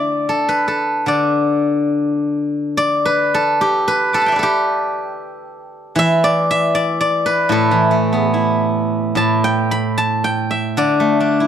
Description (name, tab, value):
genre	chinese traditional, Chinese solo plucked strings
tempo	71-80 BPM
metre	2/4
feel	rubato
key	D zhi mode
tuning	A4 = 440 Hz
part	steel-string zither	solo	0.0-11.5 s	A2 to D6	-14 LUFS	equal	none
room	studio ambience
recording	dry, close 1970s-style studio recording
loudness	-14 LUFS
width	side -8 dB against mid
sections	0.0-2.8 A section; 2.8-11.5 B section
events	none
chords	none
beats	0.27 | 1.07 1.90 | 2.75 3.58 | 4.41 5.21 | 5.97 6.73 | 7.51 8.33 | 9.17 9.99 | 10.79